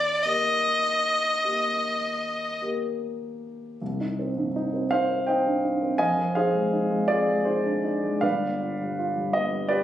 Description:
classical, romantic duo for violin and grand piano; 49-57 BPM (dotted quarters); 12/8; rubato; Eb major, C minor from 3.8 s; A4 = 441 Hz
warm violin; melody; 0.0-2.6 s; D5 to Eb5; -23 LUFS; left 1 dB
dark concert grand piano; accompaniment; 0.0-9.8 s; G1 to Ab5; -24 LUFS; equal
light reverb; recorded on a phone in the room, club reverb; -23 LUFS; side -11 dB against mid
0.0-3.8 A section; 3.8-9.8 B section
0.0 Eb; 3.8 Cm; 6.0 Fm7; 8.2 G7

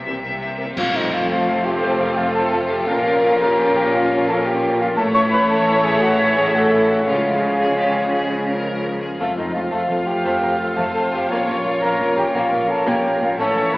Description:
cinematic, heroic adventure film score; 114 BPM (dotted quarters); 12/8; straight; A4 = 444 Hz
rich symphonic violin section; melody; 0.0-13.8 s; E4 to E5; -29 LUFS; left 1 dB
warm symphonic violin section; second line; 0.0-13.8 s; Ab3 to G4; -28 LUFS; equal
rich symphonic viola section; accompaniment; 0.0-13.8 s; Bb3 to C#5; -24 LUFS; equal
concert harp; arpeggios; 0.0-13.8 s; F2 to Db6; -32 LUFS; left 1 dB
rich symphonic cello section; bass; 0.0-13.8 s; F2 to Db3; -27 LUFS; equal
warm studio double bass section; bass; 0.0-13.8 s; F1 to Db2; -32 LUFS; equal
clear trombone section; sustained chords; 0.1-13.8 s; E3 to Bb3; -28 LUFS; equal
warm French horn section; sustained chords; 0.1-13.8 s; A3 to Bb4; -27 LUFS; left 1 dB
clear clarinet; second line; 0.8-13.8 s; Eb4 to C#5; -28 LUFS; equal
mellow hollow concert flute; second line; 0.8-13.8 s; Eb5 to C#6; -22 LUFS; equal
clear trumpet section; stabs; 0.8-13.8 s; A4 to F5; -23 LUFS; equal
clash cymbals and concert bass drum; percussion; 0.8-1.4 s; -27 LUFS; equal
wet scoring stage reverb, RT60 2.1 s; heard from further back in the room, AM radio sound; -16 LUFS; side -21 dB against mid
0.8-13.8 A section
band accent 0.8-1.1
0.0 C7; 0.8 F; 2.9 Bbm; 5.0 A; 7.1 Db; 9.2 F; 11.3 Bbm

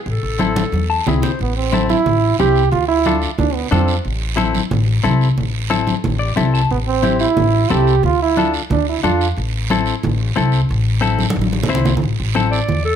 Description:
latin, cumbia; 180 BPM; 4/4; straight; A minor; A4 = 440 Hz
clear clarinet; melody; 0.1-1.0, 12.5-13.0 s; A4 to D5; -23 LUFS; equal; plate reverb
upright bass; bass; 0.1-13.0 s; A1 to F2; -18 LUFS; equal
guiro; percussion; 0.1-13.0 s; -29 LUFS; right 9 dB
semi-hollow electric guitar; accompaniment; 0.4-12.6 s; C4 to A5; -20 LUFS; left 7 dB
congas; percussion; 0.4-12.9 s; -22 LUFS; equal
bright trombone; second line; 1.4-3.9, 6.7-9.3 s; B3 to G4; -17 LUFS; right 7 dB
light reverb; -14 LUFS; side -8 dB against mid
0.0-1.4 A section; 1.4-12.0 B section
drum fill 0.4-1.4, 11.2-12.0; clean electric guitar fill 0.7-1.4, 6.0-6.7; trombone solo 1.4-12.0
0.1 Am; 2.7 Dm; 4.0 Am; 8.0 Dm; 9.4 Am

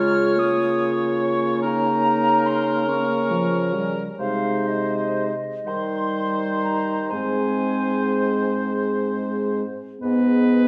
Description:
classical, slow romantic movement for wind quintet; 39-49 BPM (dotted quarters); 6/8; rubato; Ab major; A4 = 440 Hz
silver concert flute; melody; 0.0-10.7 s; Eb5 to F6; -29 LUFS; equal
warm oboe; second line; 0.0-10.7 s; Bb4 to Db5; -31 LUFS; equal
mellow French horn; accompaniment; 0.0-10.7 s; F3 to B3; -27 LUFS; equal
warm clarinet; accompaniment; 0.0-10.7 s; C4 to G#4; -29 LUFS; equal
warm bassoon; bass; 0.0-10.7 s; G#2 to Eb3; -29 LUFS; equal
wet recital hall reverb, RT60 1.3 s; heard from further back in the room; -22 LUFS; mono
0.0-10.0 A section
0.0 Bbm7/Db; 1.6 Eb7/Db; 4.2 Ab/C; 5.7 Eb6; 7.1 Ab; 10.0 G#m

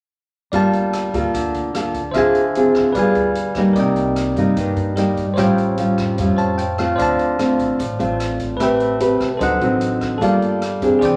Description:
bossa nova; 149 BPM; 4/4; straight; G minor; A4 = 437 Hz
bell-like tine electric piano; accompaniment; 0.5-11.2 s; G#4 to A5; -24 LUFS; equal
nylon-string guitar; accompaniment; 0.5-11.2 s; G2 to B4; -20 LUFS; equal
upright bass; bass; 0.5-11.2 s; E1 to G2; -31 LUFS; equal
swinging big-band drum kit; drums; 0.5-11.1 s; hi-hat, kick drum, rim click; -36 LUFS; equal
wet large studio reverb, RT60 0.9 s; -18 LUFS; mono
0.5-11.2 A section
tine electric piano fill 6.2-7.0
0.5 Gm9; 2.1 Dm7b5; 3.0 G7b9; 3.8 Cm7; 5.4 A7alt; 7.0 Dm7; 8.6 Am9; 9.4 D7b9; 10.2 Gm9

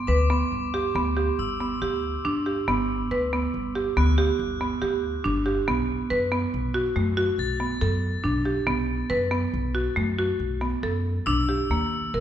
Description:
contemporary instrumental, chamber music in an uneven meter; 140 BPM; 7/4; straight; A4 = 441 Hz
buzzing marimba with hard mallets; arpeggios; 0.1-12.2 s; A3 to B4; -25 LUFS; right 2 dB
upright bass; bass; 0.1-12.2 s; G1 to F#2; -27 LUFS; left 1 dB
crotales; texture; 0.1-11.9 s; D6 to A6; -34 LUFS; left 4 dB
moderate scoring stage reverb, RT60 1.7 s; recorded in a church or concert hall; -23 LUFS; side -10 dB against mid
0.0-12.2 A section
0.0 G; 5.7 B7(no3)

